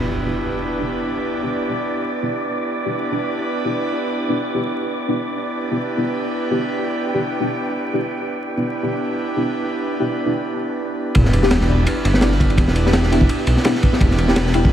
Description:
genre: drum and bass, jungle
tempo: 168 BPM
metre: 4/4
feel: swing 55% on 16ths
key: E minor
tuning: A4 = 440 Hz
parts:
  - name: airy breathy pad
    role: sustained chords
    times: 0.0-14.7 s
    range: B3 to B4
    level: -23 LUFS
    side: right 1 dB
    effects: chorus
  - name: deep mellow chord stab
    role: stabs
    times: 0.0-14.6 s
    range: B3 to G4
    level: -24 LUFS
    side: left 2 dB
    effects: chorus, phaser, dub echo
  - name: impact and sub drop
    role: sound effects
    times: 0.0-1.2, 11.2-12.6 s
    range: none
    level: -26 LUFS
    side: equal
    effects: none
  - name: wind-like tuned noise texture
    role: texture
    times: 0.3-10.5 s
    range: D5 to D6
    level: -28 LUFS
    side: right 1 dB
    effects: built-in reverb
  - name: crunchy breakbeat drum kit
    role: drums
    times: 11.1-14.7 s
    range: kick drum, ride cymbal, snare drum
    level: -18 LUFS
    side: equal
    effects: none
  - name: detuned saw bass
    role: bass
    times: 11.2-14.7 s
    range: E1 to B1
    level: -18 LUFS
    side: equal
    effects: none
room: light reverb, small room ambience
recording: vinyl crackle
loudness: -17 LUFS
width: side -10 dB against mid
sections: 0.0-11.2 A section; 11.2-14.7 B section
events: impact 0.0-1.2, 11.2-12.6; filter sweep on synth stab 0.0-11.2; break 10.4-11.2; drop 11.2-14.7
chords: 0.0 Em7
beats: 0.08 0.44 0.79 | 1.15 1.51 1.86 2.22 | 2.58 2.94 3.29 3.65 | 4.01 4.37 4.72 5.08 | 5.44 5.79 6.15 6.51 | 6.87 7.22 7.58 7.94 | 8.29 8.65 9.01 9.37 | 9.72 10.08 10.44 10.79 | 11.15 11.51 11.87 12.22 | 12.58 12.94 13.29 13.65 | 14.01 14.37 14.72

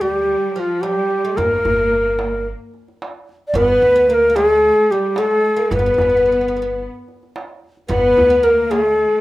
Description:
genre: Arabic maqam ensemble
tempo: 110 BPM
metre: 4/4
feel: straight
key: G maqam saba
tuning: A4 = 440 Hz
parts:
  - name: breathy ney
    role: melody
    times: 0.0-9.2 s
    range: F4 to D5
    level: -14 LUFS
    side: left 1 dB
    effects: plate reverb
  - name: oud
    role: second line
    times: 0.0-9.2 s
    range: F3 to B3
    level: -27 LUFS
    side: right 3 dB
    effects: none
  - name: rich symphonic cello section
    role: second line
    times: 0.0-9.2 s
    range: F3 to B3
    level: -26 LUFS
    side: left 1 dB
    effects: plate reverb
  - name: upright bass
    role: bass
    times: 0.0-9.0 s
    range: G1 to D2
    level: -26 LUFS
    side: right 1 dB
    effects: none
  - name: darbuka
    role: percussion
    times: 0.3-9.1 s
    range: none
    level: -28 LUFS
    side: right 2 dB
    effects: none
room: moderate studio reverb, RT60 0.7 s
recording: rough home demo mix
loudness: -14 LUFS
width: side -17 dB against mid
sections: 0.0-9.2 A section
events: none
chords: none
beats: 0.28 0.83 | 1.37 1.91 2.46 3.00 | 3.54 4.09 4.63 5.17 | 5.72 6.26 6.80 7.35 | 7.89 8.43 8.98

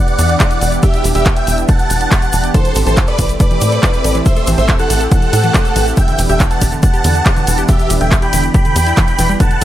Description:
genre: uplifting trance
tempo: 140 BPM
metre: 4/4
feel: straight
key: E minor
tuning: A4 = 440 Hz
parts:
  - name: big supersaw lead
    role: melody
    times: 0.0-9.6 s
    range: G4 to B5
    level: -17 LUFS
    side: right 1 dB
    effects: sidechain pumping, digital delay
  - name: analog string pad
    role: sustained chords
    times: 0.0-9.6 s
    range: E3 to D5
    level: -22 LUFS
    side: equal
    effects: ensemble chorus, sidechain pumping
  - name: punchy analog drum machine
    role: drums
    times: 0.1-9.6 s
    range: handclaps, hi-hat, ride cymbal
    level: -21 LUFS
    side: equal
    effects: sidechain pumping on hats, sidechain pumping on cymbals
  - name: egg shaker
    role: percussion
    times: 0.1-9.6 s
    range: none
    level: -26 LUFS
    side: left 3 dB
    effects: none
  - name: tight sequencer bass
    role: bass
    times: 0.2-9.6 s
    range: E1 to A2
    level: -16 LUFS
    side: equal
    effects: sidechain pumping
  - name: electronic kick drum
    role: drums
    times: 0.4-9.5 s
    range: none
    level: -13 LUFS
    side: equal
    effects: none
  - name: analog pluck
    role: arpeggios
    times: 2.5-9.6 s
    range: D3 to A4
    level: -23 LUFS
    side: left 1 dB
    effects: chorus, sidechain pumping, digital delay
room: digital ambience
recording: none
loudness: -10 LUFS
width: side -13 dB against mid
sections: 0.0-9.6 A section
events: none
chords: 0.0 Em7; 2.5 Am7; 6.0 Em7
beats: 0.40 | 0.83 1.26 1.69 2.12 | 2.54 2.97 3.40 3.83 | 4.26 4.69 5.12 5.54 | 5.97 6.40 6.83 7.26 | 7.69 8.12 8.54 8.97 | 9.40

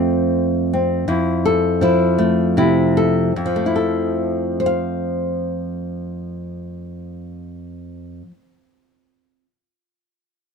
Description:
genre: folk, solo fingerstyle acoustic guitar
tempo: 49-58 BPM (dotted quarters)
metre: 6/8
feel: straight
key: F major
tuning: A4 = 440 Hz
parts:
  - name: nylon-string guitar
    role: solo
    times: 0.0-9.5 s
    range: F2 to F5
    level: -18 LUFS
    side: equal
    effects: none
room: light reverb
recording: dark, warm production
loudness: -16 LUFS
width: side -6 dB against mid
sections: 0.0-1.1 A section; 1.1-3.4 B section; 3.4-8.3 C section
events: slowing down 0.0-3.4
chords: 0.0 F; 1.1 Fmaj7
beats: 0.03 | 1.08 2.18 | 3.35 4.59 | 5.82 7.04

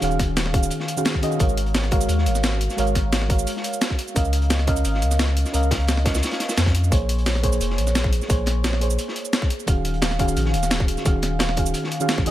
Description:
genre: liquid drum and bass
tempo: 174 BPM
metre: 4/4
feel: straight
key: Bb minor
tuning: A4 = 440 Hz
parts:
  - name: mellow FM electric piano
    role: accompaniment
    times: 0.0-12.3 s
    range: Eb3 to F5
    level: -25 LUFS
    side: right 1 dB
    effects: chorus, ping-pong delay
  - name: warm sub bass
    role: bass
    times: 0.0-12.3 s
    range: Eb1 to F2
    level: -22 LUFS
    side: equal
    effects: none
  - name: breakbeat sampler-style drum kit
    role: drums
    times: 0.0-12.3 s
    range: hi-hat, shaker, snare drum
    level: -26 LUFS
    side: equal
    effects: none
  - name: crunchy breakbeat drum kit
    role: drums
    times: 0.0-12.3 s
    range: hi-hat, snare drum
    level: -31 LUFS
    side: equal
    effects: high-pass filter on hats, high-pass filter on snare, high-pass filter on room
  - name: electronic kick drum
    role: drums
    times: 0.2-12.2 s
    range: none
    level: -21 LUFS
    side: equal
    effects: none
room: little or no reverb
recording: none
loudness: -19 LUFS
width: side -14 dB against mid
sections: 0.0-6.9 A section; 6.9-12.3 A section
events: drop 0.0-6.9, 6.9-12.3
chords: 0.0 Ebm11; 1.4 Ab13sus4; 4.2 Db69; 6.9 Bbm9; 9.7 Ebm11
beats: | 0.02 0.37 0.71 1.06 | 1.40 1.75 2.09 2.44 | 2.78 3.13 3.47 3.81 | 4.16 4.50 4.85 5.20 | 5.54 5.88 6.23 6.57 | 6.92 7.26 7.61 7.95 | 8.30 8.64 8.99 9.33 | 9.68 10.02 10.37 10.71 | 11.06 11.40 11.75 12.09

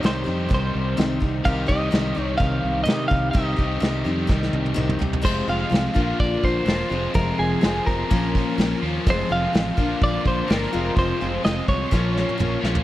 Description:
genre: folk rock and heartland rock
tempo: 126 BPM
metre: 4/4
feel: straight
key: F minor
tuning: A4 = 440 Hz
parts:
  - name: picked steel-string acoustic guitar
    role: accompaniment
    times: 0.0-12.8 s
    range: F2 to G4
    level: -27 LUFS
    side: left 4 dB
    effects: none
  - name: rich symphonic string section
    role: sustained chords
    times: 0.0-12.8 s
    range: G3 to D5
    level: -36 LUFS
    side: right 1 dB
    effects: none
  - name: cranked stack guitar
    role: riff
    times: 0.0-12.8 s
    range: F2 to G4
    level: -28 LUFS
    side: right 1 dB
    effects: overdrive
  - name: fingered electric bass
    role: bass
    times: 0.0-12.8 s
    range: E1 to C3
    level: -26 LUFS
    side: equal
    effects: none
  - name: soft brush drum kit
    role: drums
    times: 0.0-12.8 s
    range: crash cymbal, hi-hat, kick drum, snare drum, toms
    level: -22 LUFS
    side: equal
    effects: none
  - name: twelve-string electric guitar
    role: melody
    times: 0.1-12.6 s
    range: Ab4 to F5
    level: -27 LUFS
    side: equal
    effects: spring reverb
room: little or no reverb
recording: dry, close 1970s-style studio recording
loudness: -19 LUFS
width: side -14 dB against mid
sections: 0.0-5.2 A section; 5.2-12.8 B section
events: drum fill 4.3-5.2, 11.9-12.8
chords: 0.0 Cm; 5.2 Fm; 6.0 Bb; 6.9 Fm; 8.1 Bbm; 9.1 Fm; 9.8 Bb; 10.7 Fm; 11.9 Bbm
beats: 0.03 0.51 0.98 | 1.45 1.93 2.40 2.88 | 3.35 3.82 4.30 4.77 | 5.25 5.72 6.20 6.67 | 7.15 7.62 8.10 8.58 | 9.05 9.53 10.01 10.48 | 10.96 11.43 11.91 12.38

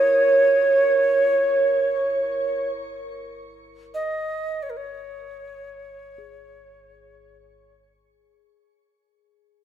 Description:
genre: world meditative, free-time meditation music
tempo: free time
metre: none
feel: none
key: unclear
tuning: A4 = 440 Hz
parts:
  - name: Native American-style cedar flute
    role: melody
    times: 0.0-7.9 s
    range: A#4 to D#5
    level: -20 LUFS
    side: right 2 dB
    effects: shimmer reverb, ping-pong delay
  - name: quartz singing bowl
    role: texture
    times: 0.0-8.6 s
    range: E4 to A#4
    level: -35 LUFS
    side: left 4 dB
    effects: shimmer reverb
room: wet recital hall reverb, RT60 1.5 s, small room ambience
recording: none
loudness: -18 LUFS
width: side -10 dB against mid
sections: 0.0-8.1 A section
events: fade-out 0.0-8.1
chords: none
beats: free time

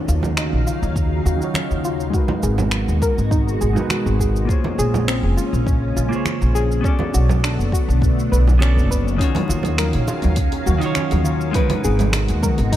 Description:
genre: sunset chillout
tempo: 102 BPM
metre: 4/4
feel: straight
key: Eb minor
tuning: A4 = 439 Hz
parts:
  - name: clean electric guitar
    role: accompaniment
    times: 0.0-12.8 s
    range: Eb3 to D5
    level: -26 LUFS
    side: moving between left 6 dB and right 4 dB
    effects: auto-pan, low-pass filter, ping-pong delay
  - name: soft string machine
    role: sustained chords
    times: 0.0-12.8 s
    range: Cb3 to F5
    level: -26 LUFS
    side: equal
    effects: phaser, ensemble chorus
  - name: soft round pluck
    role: arpeggios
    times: 0.0-12.8 s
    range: C4 to B4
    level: -27 LUFS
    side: left 2 dB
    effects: chorus, cassette tape, ping-pong delay
  - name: upright bass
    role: bass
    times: 0.1-12.8 s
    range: F1 to Eb2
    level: -19 LUFS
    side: equal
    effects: none
  - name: deep house drum kit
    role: drums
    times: 0.1-12.8 s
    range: cabasa, finger snaps, hi-hat, toms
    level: -26 LUFS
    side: equal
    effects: none
  - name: congas and bongos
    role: percussion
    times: 0.2-12.7 s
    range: none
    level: -26 LUFS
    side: right 3 dB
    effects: none
  - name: electronic kick drum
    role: drums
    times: 1.0-12.8 s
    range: none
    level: -20 LUFS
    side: equal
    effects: none
room: little or no reverb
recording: none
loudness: -16 LUFS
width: side -12 dB against mid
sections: 0.0-12.8 A section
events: filter sweep on clean electric guitar 0.0-12.8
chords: 0.0 Ebm9; 2.1 Abm9; 4.5 Bbm9; 6.8 Bm9; 9.2 Ebm9; 11.6 Abm9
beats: 0.38 0.96 1.55 | 2.14 2.73 3.32 3.90 | 4.49 5.08 5.67 6.26 | 6.85 7.43 8.02 8.61 | 9.20 9.79 10.38 10.96 | 11.55 12.14 12.73

